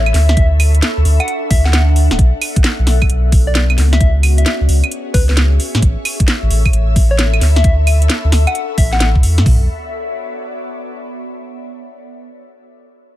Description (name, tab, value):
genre	UK garage, two-step garage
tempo	132 BPM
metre	4/4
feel	swing 66% on 16ths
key	B dorian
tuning	A4 = 440 Hz
part	saturated sub bass	bass	0.0-9.7 s	D1 to A2	-12 LUFS	equal	sidechain pumping
part	ethereal airy pad	texture	0.0-11.2 s	B3 to C#6	-24 LUFS	left 2 dB	ensemble chorus, built-in reverb, phaser, sidechain pumping
part	garage drum kit	drums	0.1-9.4 s	claves, hi-hat, snare drum	-19 LUFS	right 1 dB	none
part	soft struck synth lead	melody	0.3-9.1 s	B4 to F#5	-23 LUFS	left 2 dB	chorus, tape echo
part	garage drum kit	drums	0.4-9.6 s	hi-hat, kick drum, toms	-13 LUFS	equal	none
room	little or no reverb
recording	none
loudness	-11 LUFS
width	side -14 dB against mid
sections	0.0-9.5 A section; 9.5-11.3 B section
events	drop 0.0-9.5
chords	0.4 D69; 2.2 Bm9; 4.0 C#m7; 5.6 A; 7.6 D69; 8.6 A69; 9.5 Bmadd9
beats	| 0.37 0.82 1.28 1.73 | 2.19 2.64 3.10 3.55 | 4.00 4.46 4.91 5.37 | 5.82 6.28 6.73 7.19 | 7.64 8.10 8.55 9.01 | 9.46 9.91 10.37 10.82